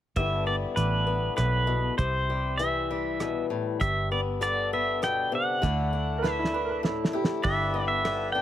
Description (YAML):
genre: honky-tonk and classic country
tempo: 99 BPM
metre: 3/4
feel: straight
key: G major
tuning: A4 = 437 Hz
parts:
  - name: pedal steel guitar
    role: melody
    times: 0.2-8.4 s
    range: B4 to G5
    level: -28 LUFS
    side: right 1 dB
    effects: none
  - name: picked swing-style acoustic guitar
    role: accompaniment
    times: 0.2-8.4 s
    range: G2 to E4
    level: -30 LUFS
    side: left 5 dB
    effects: none
  - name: vintage muted fingered electric bass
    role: bass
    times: 0.2-8.4 s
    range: G1 to D2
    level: -30 LUFS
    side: right 1 dB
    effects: none
  - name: cloth-damped thuddy drum kit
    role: drums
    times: 0.2-8.2 s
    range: hi-hat, kick drum, ride cymbal, rim click, snare drum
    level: -29 LUFS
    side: right 1 dB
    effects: none
  - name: clear upright piano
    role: second line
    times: 6.2-7.4 s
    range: E4 to B4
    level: -30 LUFS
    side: right 6 dB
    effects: none
  - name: pedal steel guitar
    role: sustained chords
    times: 7.4-8.4 s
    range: B4 to D5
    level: -35 LUFS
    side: left 1 dB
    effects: none
room: little or no reverb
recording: none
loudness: -24 LUFS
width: side -11 dB against mid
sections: 0.2-7.4 A section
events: drum fill 6.2-7.4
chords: 0.2 G6; 2.0 C; 3.8 G; 5.6 Dadd9; 7.4 G6